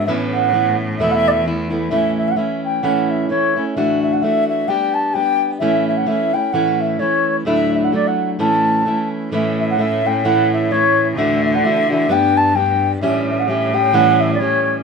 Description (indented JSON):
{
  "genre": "celtic folk, Celtic polka",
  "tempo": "130 BPM",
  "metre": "2/4",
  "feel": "swing 58% on 8ths",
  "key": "A mixolydian",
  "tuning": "A4 = 440 Hz",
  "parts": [
    { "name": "baroque flute", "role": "melody", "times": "0.0-14.8 s", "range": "C#5 to A5", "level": "-17 LUFS", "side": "equal", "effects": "none" },
    { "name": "fingerpicked plugged-in steel-string acoustic guitar", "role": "accompaniment", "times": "0.0-14.8 s", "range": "D2 to G4", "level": "-19 LUFS", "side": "equal", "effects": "none" },
    { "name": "bright cello", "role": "bass", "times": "0.0-1.9, 9.3-14.8 s", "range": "E2 to D3", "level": "-23 LUFS", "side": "left 1 dB", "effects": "none" }
  ],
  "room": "moderate small room ambience, RT60 0.5 s",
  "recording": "minimal, uncompressed stereo recording",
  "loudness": "-14 LUFS",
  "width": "side -5 dB against mid",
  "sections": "0.0-1.9 A section; 1.9-9.3 B section; 9.3-14.8 B section",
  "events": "none",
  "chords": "0.1 Aadd9; 1.0 Esus4; 1.9 A; 3.8 Dadd9; 4.7 G; 5.6 A; 7.5 Dadd9; 8.4 A; 11.2 Dadd9; 12.1 G; 13.0 A7"
}